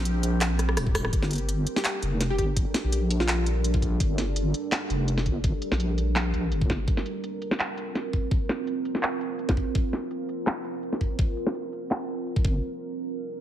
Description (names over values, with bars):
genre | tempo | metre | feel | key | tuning
half-time drum and bass | 167 BPM | 4/4 | swing 54% on 16ths, half-time | G minor | A4 = 440 Hz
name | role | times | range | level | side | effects
deep dark ambient pad | sustained chords | 0.0-12.6 s | G3 to Bb4 | -32 LUFS | right 2 dB | chorus, built-in reverb, sidechain pumping
deep soft wobble bass | bass | 0.0-6.9, 12.4-12.6 s | Eb1 to Bb1 | -26 LUFS | equal | chorus
organic electronic drum kit | drums | 0.1-12.3 s | handclaps, hi-hat, rim click, snare drum, tambourine | -29 LUFS | equal | low-pass filter on hats, studio reverb, low-pass filter on snare, low-pass filter on perc
electronic kick drum | drums | 0.9-12.5 s | none | -25 LUFS | equal | studio reverb
plucky unison lead | melody | 1.8-3.5 s | F4 to G4 | -33 LUFS | left 1 dB | ping-pong delay
room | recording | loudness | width
light reverb, digital ambience | heavily compressed radio sound | -24 LUFS | side -11 dB against mid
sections
0.0-1.1 A section; 1.1-12.6 B section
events
drop 0.0-1.1; drum fill 0.4-1.1; filter sweep on drum 1.1-12.6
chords
0.0 Fsus4 (rootless); 1.1 Gm; 6.9 Fsus4; 12.4 Gm; 12.6 N.C.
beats
0.05 0.41 0.77 | 1.13 1.49 1.85 2.21 | 2.56 2.92 3.28 3.64 | 4.00 4.36 4.72 5.08 | 5.44 5.80 6.16 6.52 | 6.88 7.24 7.59 7.95 | 8.31 8.67 9.03 9.39 | 9.75 10.11 10.47 10.83 | 11.19 11.55 11.91 12.27